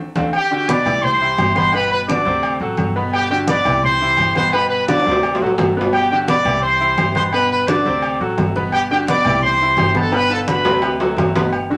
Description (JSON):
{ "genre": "latin, salsa", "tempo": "172 BPM", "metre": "4/4", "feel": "straight", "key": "G major", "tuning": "A4 = 440 Hz", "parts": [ { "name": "bright concert grand piano", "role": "accompaniment", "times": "0.2-11.8 s", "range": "B2 to C5", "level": "-25 LUFS", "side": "equal", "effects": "none" }, { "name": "upright bass", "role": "bass", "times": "0.2-11.8 s", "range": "G1 to D2", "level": "-28 LUFS", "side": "equal", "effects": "none" }, { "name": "congas", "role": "percussion", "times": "0.2-11.8 s", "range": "none", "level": "-26 LUFS", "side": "equal", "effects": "none" }, { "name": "timbales and agogo bells", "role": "percussion", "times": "0.2-11.7 s", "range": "none", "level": "-25 LUFS", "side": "equal", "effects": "none" }, { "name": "bright trumpet section", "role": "melody", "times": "0.3-11.0 s", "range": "G4 to D6", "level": "-19 LUFS", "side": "equal", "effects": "none" } ], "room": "wet studio reverb, RT60 0.8 s", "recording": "none", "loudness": "-17 LUFS", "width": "mono", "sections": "0.3-11.5 A section", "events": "drum fill 0.0-0.3, 4.9-5.9, 10.1-11.5; band accent 0.0-0.3", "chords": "0.3 Gmaj7; 1.0 Cmaj7; 1.7 Gmaj7; 2.4 D7; 3.1 Gmaj7; 3.8 Cmaj7; 4.5 Gmaj7; 5.2 D7; 5.9 Gmaj7; 6.6 Cmaj7; 7.3 Gmaj7; 8.0 D7; 8.7 Gmaj7; 9.4 Cmaj7; 10.1 Gmaj7", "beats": "| 0.34 0.69 1.04 1.39 | 1.74 2.09 2.44 2.79 | 3.13 3.48 3.83 4.18 | 4.53 4.88 5.23 5.58 | 5.93 6.28 6.63 6.98 | 7.33 7.68 8.03 8.38 | 8.73 9.08 9.43 9.78 | 10.13 10.48 10.82 11.18 | 11.52" }